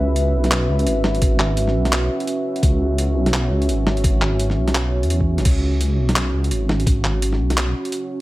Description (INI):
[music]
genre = half-time drum and bass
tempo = 170 BPM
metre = 4/4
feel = swing 59% on 16ths, half-time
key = C# minor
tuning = A4 = 440 Hz
[part]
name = dark analog pad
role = sustained chords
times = 0.0-8.2 s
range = C#4 to E5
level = -23 LUFS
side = right 1 dB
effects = chorus, sidechain pumping
[part]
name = dark detuned saw bass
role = bass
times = 0.0-7.7 s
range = G#1 to E2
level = -19 LUFS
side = equal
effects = none
[part]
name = boom bap sampler-style drum kit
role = drums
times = 0.2-8.0 s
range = crash cymbal, handclaps, hi-hat, snare drum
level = -24 LUFS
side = equal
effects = studio reverb
[part]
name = electronic kick drum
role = drums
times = 1.2-6.9 s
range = none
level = -18 LUFS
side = equal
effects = studio reverb
[sound]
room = light reverb, digital ambience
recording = none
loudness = -17 LUFS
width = side -17 dB against mid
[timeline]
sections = 0.0-8.2 A section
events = none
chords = 0.0 C#m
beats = 0.16 0.51 0.86 | 1.22 1.57 1.92 2.28 | 2.63 2.98 3.33 3.69 | 4.04 4.39 4.75 5.10 | 5.45 5.80 6.16 6.51 | 6.86 7.22 7.57 7.92